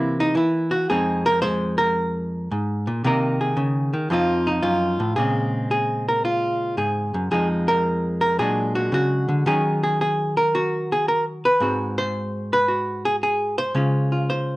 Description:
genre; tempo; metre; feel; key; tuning
solo jazz; 112 BPM; 4/4; swing 68% on 8ths; Bb minor; A4 = 440 Hz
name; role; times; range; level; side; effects
archtop guitar, miked and amplified; solo; 0.0-14.6 s; F2 to C5; -19 LUFS; equal; none
room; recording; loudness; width
light reverb; worn, warbling old tape, cassette tape, warbly pitch drift; -19 LUFS; side -19 dB against mid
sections
0.0-5.2 A section; 5.2-14.6 B section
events
hollow-body jazz guitar solo 0.0-5.2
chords
0.0 C7#9; 0.9 Fm7; 3.0 Bbm11/C; 4.1 F7; 5.2 Bbm9; 7.3 Fm7; 8.4 Bb7alt; 9.5 Ebm7; 11.6 Ab7#9; 13.8 Dbmaj7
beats
0.35 | 0.88 1.42 1.95 2.49 | 3.02 3.56 4.10 4.63 | 5.17 5.70 6.24 6.78 | 7.31 7.85 8.39 8.92 | 9.46 9.99 10.53 11.07 | 11.61 12.14 12.68 13.22 | 13.75 14.29

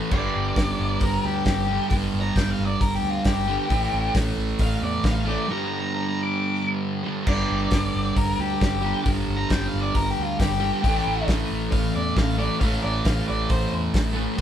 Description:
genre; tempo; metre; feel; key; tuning
garage rock duo or trio; 135 BPM; 4/4; straight; unclear; A4 = 439 Hz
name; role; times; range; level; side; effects
fuzz guitar; riff; 0.0-14.4 s; G2 to A3; -25 LUFS; right 1 dB; distortion
octave-fuzz lead guitar; melody; 0.1-13.7 s; F4 to D6; -28 LUFS; left 2 dB; distortion
picked electric bass; bass; 0.1-14.4 s; G1 to E2; -28 LUFS; equal; none
cloth-damped thuddy drum kit; drums; 0.1-14.4 s; crash cymbal, hi-hat, kick drum, snare drum; -25 LUFS; equal; none
room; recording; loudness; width
light reverb; band playing live in one room; -21 LUFS; side -10 dB against mid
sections
0.0-7.3 A section; 7.3-14.4 A section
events
break 5.5-7.3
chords
0.1 G5; 3.7 A5; 5.5 G5; 10.8 A5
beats
| 0.11 0.56 1.01 1.46 | 1.91 2.36 2.81 3.25 | 3.70 4.15 4.60 5.04 | 5.49 5.94 6.38 6.83 | 7.28 7.72 8.17 8.61 | 9.06 9.50 9.95 10.39 | 10.84 11.28 11.72 12.17 | 12.61 13.05 13.50 13.94 | 14.38

